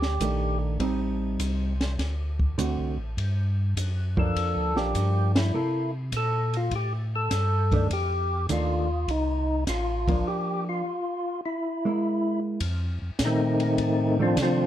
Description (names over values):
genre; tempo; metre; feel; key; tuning
soul jazz organ trio; 102 BPM; 4/4; swing 69% on 8ths; F mixolydian; A4 = 441 Hz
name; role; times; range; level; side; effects
percussive tonewheel organ; melody; 0.0-0.6, 4.2-14.7 s; Eb3 to A4; -27 LUFS; left 1 dB; slow rotary speaker, overdrive, plate reverb
tonewheel organ; bass; 0.0-14.7 s; A1 to C3; -27 LUFS; equal; chorus vibrato, slow rotary speaker
compact cocktail drum kit; drums; 0.0-14.6 s; hi-hat, kick drum, ride cymbal, snare drum; -31 LUFS; equal; none
hollow-body jazz guitar; accompaniment; 0.2-14.7 s; D3 to A4; -28 LUFS; right 2 dB; none
room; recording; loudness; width
moderate club reverb, RT60 0.6 s; dark, warm production; -24 LUFS; side -11 dB against mid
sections
0.0-12.6 A section; 12.6-14.7 B section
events
band accent 5.2; break 10.3-12.6; tonewheel organ solo 12.6-14.7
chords
0.0 F13 (rootless); 0.8 Am7b5; 2.0 D7; 3.2 Gm7; 5.5 C13; 7.9 F13; 10.3 Bb6/F; 11.4 E; 12.6 F6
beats
0.21 | 0.80 1.40 1.99 2.58 | 3.17 3.77 4.36 4.95 | 5.54 6.13 6.72 7.31 | 7.90 8.49 9.08 9.67 | 10.26 10.85 11.44 12.02 | 12.61 13.20 13.79 14.37